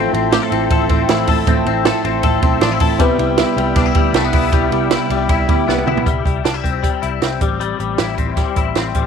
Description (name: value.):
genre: jangly indie pop.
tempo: 157 BPM.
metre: 4/4.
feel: straight.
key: C major.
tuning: A4 = 440 Hz.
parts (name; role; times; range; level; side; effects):
fingerpicked plugged-in steel-string acoustic guitar; accompaniment; 0.0-6.1 s; A2 to E4; -20 LUFS; right 12 dB; none.
reed electric piano; accompaniment; 0.0-6.1 s; C4 to B4; -25 LUFS; left 10 dB; none.
pedal harmonium; sustained chords; 0.0-6.0 s; F3 to C6; -25 LUFS; right 2 dB; none.
direct-recorded clean electric guitar; arpeggios; 0.0-9.1 s; G3 to A4; -19 LUFS; left 12 dB; ensemble chorus.
vintage muted picked electric bass; bass; 0.0-9.1 s; A1 to D2; -23 LUFS; equal; none.
compact cocktail drum kit; drums; 0.1-9.0 s; hi-hat, kick drum, ride cymbal, snare drum, toms; -18 LUFS; right 3 dB; none.
room: light reverb, small room ambience.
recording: 1960s-style stereo with parts hard left and right.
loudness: -14 LUFS.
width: side -7 dB against mid.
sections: 0.0-6.1 A section; 6.1-9.1 B section.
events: drum fill 5.7-6.1.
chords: 0.0 Fmaj7/A; 3.0 Cmaj7; 6.1 C; 7.4 Am7.